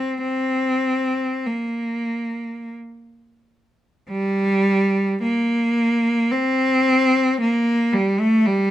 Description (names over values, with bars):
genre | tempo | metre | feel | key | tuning
classical, free, expressive piece for unaccompanied cello | 38-57 BPM | 3/4 | rubato | unclear | A4 = 440 Hz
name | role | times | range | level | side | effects
clear cello | solo | 0.0-8.7 s | G3 to C4 | -18 LUFS | equal | none
room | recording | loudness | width
light reverb | dark, warm production | -18 LUFS | side -13 dB against mid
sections
0.0-4.1 A section; 4.1-8.7 B section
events
none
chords
none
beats
| 0.20 1.45 2.72 | 4.10 5.23 6.33 | 7.41 8.47